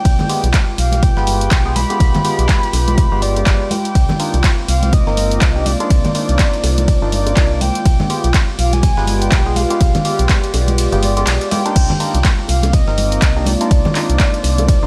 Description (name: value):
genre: deep house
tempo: 123 BPM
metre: 4/4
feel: swing 58% on 16ths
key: C minor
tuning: A4 = 436 Hz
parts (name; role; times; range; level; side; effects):
- breathy flute-like synth lead; melody; 0.0-14.9 s; D5 to B5; -25 LUFS; equal; analog chorus, tape echo
- warbly tape-like pad; sustained chords; 0.0-14.9 s; Eb3 to D6; -31 LUFS; equal; none
- warbly tape-like pad; texture; 0.0-14.9 s; C4 to D6; -29 LUFS; equal; chorus, built-in reverb, sidechain pumping
- organ-like FM bass; bass; 0.1-14.9 s; G1 to C2; -20 LUFS; equal; sidechain pumping
- breakbeat sampler-style drum kit; drums; 0.1-14.8 s; hi-hat, snare drum; -33 LUFS; equal; none
- electronic kick drum; drums; 0.1-14.8 s; none; -16 LUFS; equal; overdrive
- punchy analog drum machine; drums; 0.1-14.8 s; crash cymbal, handclaps, hi-hat, ride cymbal; -25 LUFS; equal; none
- congas and bongos; percussion; 0.2-14.7 s; none; -26 LUFS; equal; sidechain pumping on perc
- percussive organ stab; stabs; 0.3-14.9 s; Ab3 to B4; -26 LUFS; equal; chorus, sidechain pumping, tape echo
room: little or no reverb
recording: none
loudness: -15 LUFS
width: mono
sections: 0.0-11.8 A section; 11.8-14.9 A section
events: drop 0.0-11.8, 11.8-14.9; kick drops out 10.8-11.8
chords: 0.1 G7b9; 4.0 Cm11; 7.9 G7b9; 11.8 Cm11